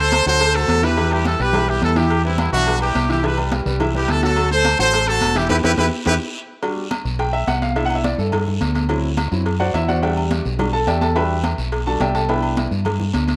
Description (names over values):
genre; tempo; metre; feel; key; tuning
latin, salsa; 212 BPM; 4/4; straight; E minor; A4 = 440 Hz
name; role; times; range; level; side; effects
brilliant horn section; melody; 0.0-6.1 s; B3 to C5; -21 LUFS; equal; none
warm concert grand piano; accompaniment; 0.0-12.7 s; E3 to B5; -25 LUFS; equal; none
deep dub fingered electric bass; bass; 0.0-13.4 s; E1 to G2; -24 LUFS; equal; none
agogo bells and timbales; percussion; 0.1-13.4 s; none; -32 LUFS; equal; none
congas; percussion; 0.1-13.4 s; none; -28 LUFS; equal; none
cowbell; percussion; 0.1-13.4 s; none; -32 LUFS; equal; none
guiro; percussion; 0.1-13.4 s; none; -37 LUFS; equal; none
room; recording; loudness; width
moderate echo chamber reverb, RT60 1.7 s, small room ambience; none; -19 LUFS; mono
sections
0.0-6.6 A section; 6.6-13.4 B section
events
band accent 5.5-6.6; drum fill 6.2-6.6; grand piano solo 6.6-13.4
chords
0.0 D7; 1.0 Em; 3.2 Cmaj7; 4.4 D7; 5.5 Em; 6.6 Cmaj9#11; 7.8 Cmaj7; 8.9 D7; 10.0 Em7; 12.3 Cmaj7